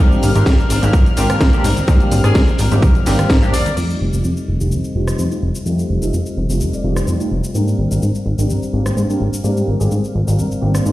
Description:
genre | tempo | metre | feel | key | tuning
filtered disco house | 127 BPM | 4/4 | swing 53% on 16ths | F mixolydian | A4 = 441 Hz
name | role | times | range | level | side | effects
funky polysynth comp | accompaniment | 0.0-10.9 s | A3 to G4 | -24 LUFS | right 1 dB | chorus, phaser, sidechain pumping, low-pass filter
dark studio string section | sustained chords | 0.0-10.9 s | F6 | -31 LUFS | left 6 dB | sidechain pumping, low-pass filter
semi-hollow electric guitar | riff | 0.0-10.9 s | G3 to Bb4 | -24 LUFS | left 4 dB | spring reverb, sidechain pumping, low-pass filter
plucky analog bass | bass | 0.0-10.9 s | F1 to Ab2 | -17 LUFS | equal | sidechain pumping, low-pass filter
house drum kit | drums | 0.1-10.9 s | cabasa, crash cymbal, hi-hat, rim click, snare drum | -25 LUFS | equal | overdrive, sidechain pumping on hats, sidechain pumping on perc, sidechain pumping on cymbals
tambourine and congas | percussion | 0.1-3.7 s | none | -25 LUFS | right 1 dB | none
electronic kick drum | drums | 0.5-3.4 s | none | -13 LUFS | equal | overdrive
bright horn section | melody | 2.2-10.0 s | Ab4 to D5 | -28 LUFS | left 2 dB | sidechain pumping, low-pass filter, digital delay
room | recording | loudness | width
light reverb | played on a big sound system in a bare room, stone room reverb | -14 LUFS | side -16 dB against mid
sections
0.0-3.8 A section; 3.8-10.9 B section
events
filter sweep 3.8-10.9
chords
0.0 Abmaj9#11; 3.8 F9; 7.6 Abmaj9#11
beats
0.47 0.94 1.41 | 1.88 2.36 2.83 3.30 | 3.77 4.25 4.72 5.19 | 5.66 6.13 6.61 7.08 | 7.55 8.03 8.50 8.97 | 9.44 9.91 10.39 10.86

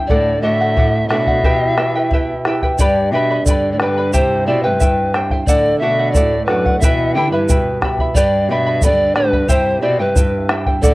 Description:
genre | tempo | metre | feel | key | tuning
andean folk, Andean ensemble | 90 BPM | 2/4 | straight | unclear | A4 = 440 Hz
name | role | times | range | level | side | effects
charango | accompaniment | 0.0-10.9 s | E4 to B5 | -21 LUFS | equal | cassette tape
flamenco guitar | accompaniment | 0.0-10.9 s | G2 to G4 | -22 LUFS | right 3 dB | cassette tape
breathy bright pan flute | melody | 0.1-10.9 s | B4 to G5 | -17 LUFS | equal | cassette tape
warm cello | second line | 0.1-10.9 s | F#2 to D3 | -22 LUFS | left 2 dB | cassette tape
bombo | percussion | 0.1-10.9 s | none | -17 LUFS | equal | none
egg shaker | percussion | 2.8-10.9 s | none | -27 LUFS | right 5 dB | none
room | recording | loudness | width
light reverb | home recording on cassette | -13 LUFS | side -19 dB against mid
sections
0.0-2.8 A section; 2.8-10.9 A section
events
none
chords
0.1 D; 1.4 Em; 2.8 G; 4.1 C; 5.5 D; 6.8 Em; 8.2 G; 9.5 C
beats
| 0.10 0.77 | 1.45 2.12 | 2.79 3.46 | 4.13 4.81 | 5.48 6.15 | 6.82 7.49 | 8.16 8.82 | 9.49 10.16 | 10.83

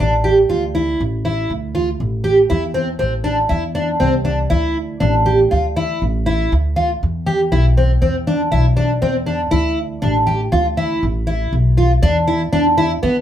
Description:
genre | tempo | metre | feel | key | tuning
progressive instrumental, band music in an uneven meter | 120 BPM | 5/4 | straight | unclear | A4 = 440 Hz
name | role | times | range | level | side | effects
fingerpicked twelve-string acoustic guitar | arpeggios | 0.0-13.2 s | B3 to G4 | -16 LUFS | equal | none
upright bass | bass | 0.0-13.2 s | A1 to E2 | -18 LUFS | equal | none
room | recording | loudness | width
wet studio ambience, RT60 0.5 s | heard from further back in the room | -14 LUFS | side -10 dB against mid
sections
0.0-12.0 A section; 12.0-13.2 B section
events
none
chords
0.0 Dm; 2.0 Am; 4.5 D5; 7.0 E5; 9.5 D5; 12.0 E5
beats
0.00 0.50 1.00 1.50 | 2.00 2.50 3.00 3.50 4.01 | 4.51 5.01 5.51 6.01 6.51 | 7.02 7.52 8.02 8.52 9.02 | 9.53 10.03 10.53 11.03 11.53 | 12.03 12.53 13.03

